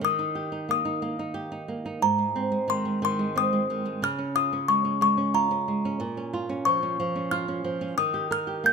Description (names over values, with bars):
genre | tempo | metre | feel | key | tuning
children's music, lullaby | 91 BPM | 3/4 | straight | Ab major | A4 = 440 Hz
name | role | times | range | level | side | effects
music box | melody | 0.0-8.7 s | Bb5 to G6 | -25 LUFS | left 3 dB | none
flamenco guitar | accompaniment | 0.0-8.7 s | Ab2 to Bb4 | -28 LUFS | right 3 dB | none
room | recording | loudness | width
moderate recital hall reverb, RT60 1.5 s | close, detailed microphones | -24 LUFS | side -5 dB against mid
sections
0.0-8.7 A section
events
none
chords
0.0 Eb; 2.0 Abadd9; 4.0 Db; 6.0 Bbm; 8.0 Eb